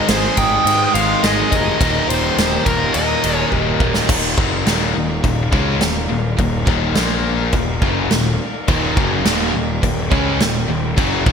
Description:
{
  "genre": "hard rock",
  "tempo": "105 BPM",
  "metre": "4/4",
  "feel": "straight",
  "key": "Eb mixolydian",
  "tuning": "A4 = 439 Hz",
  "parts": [
    { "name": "dark smooth lead guitar", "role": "melody", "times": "0.0-3.5 s", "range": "Bb4 to G5", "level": "-22 LUFS", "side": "left 2 dB", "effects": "overdrive, ping-pong delay" },
    { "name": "octave-fuzz lead guitar", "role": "second line", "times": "0.0-3.5 s", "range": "F4 to Eb5", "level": "-22 LUFS", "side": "right 6 dB", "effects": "distortion" },
    { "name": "bright tonewheel organ", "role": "sustained chords", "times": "0.0-11.3 s", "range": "Bb3 to C6", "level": "-31 LUFS", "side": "right 1 dB", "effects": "none" },
    { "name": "biting overdriven guitar", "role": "riff", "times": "0.0-11.3 s", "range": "Eb2 to Eb4", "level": "-24 LUFS", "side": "right 1 dB", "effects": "phaser" },
    { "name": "sludgy distorted guitar", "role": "riff", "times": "0.0-4.1, 8.7-11.3 s", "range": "Eb2 to Db4", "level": "-24 LUFS", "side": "right 12 dB", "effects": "overdrive" },
    { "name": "tight distorted guitar", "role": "riff", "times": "0.0-11.3 s", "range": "Eb2 to Db4", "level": "-22 LUFS", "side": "left 11 dB", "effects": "distortion" },
    { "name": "fuzz picked electric bass", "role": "bass", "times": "0.1-11.3 s", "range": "Eb1 to Ab2", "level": "-22 LUFS", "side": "equal", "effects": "overdrive" },
    { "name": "big rock drum kit", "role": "drums", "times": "0.1-11.3 s", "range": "crash cymbal, kick drum, ride cymbal, snare drum", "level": "-19 LUFS", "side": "equal", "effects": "gated reverb" }
  ],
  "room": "moderate lush hall reverb, RT60 2.1 s",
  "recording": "bright 1980s-style digital production",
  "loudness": "-14 LUFS",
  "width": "side -6 dB against mid",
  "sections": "0.0-4.1 A section; 4.1-11.3 B section",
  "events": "drum fill 3.5-4.1",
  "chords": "0.0 Ab; 1.8 Eb; 4.1 Eb5; 7.0 Bb5; 7.5 Eb"
}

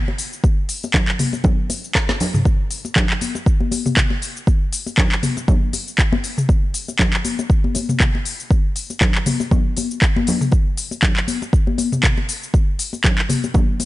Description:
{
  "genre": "house",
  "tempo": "119 BPM",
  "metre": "4/4",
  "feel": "swing 56% on 16ths",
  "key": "none",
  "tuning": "none",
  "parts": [
    { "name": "congas", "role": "percussion", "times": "0.1-13.9 s", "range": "none", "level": "-24 LUFS", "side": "left 3 dB", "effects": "none" },
    { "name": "afro-pop drum kit", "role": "drums", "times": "0.2-13.9 s", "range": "cabasa, handclaps, hi-hat, snare drum, toms", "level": "-21 LUFS", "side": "left 1 dB", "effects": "none" },
    { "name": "electronic kick drum", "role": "drums", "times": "0.4-13.7 s", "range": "none", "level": "-17 LUFS", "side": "equal", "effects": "none" }
  ],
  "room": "digital ambience",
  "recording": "nothing above 10.6 kHz",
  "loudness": "-16 LUFS",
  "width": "side -17 dB against mid",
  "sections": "0.0-13.9 A section",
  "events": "drum fill 2.0-2.5",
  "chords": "none"
}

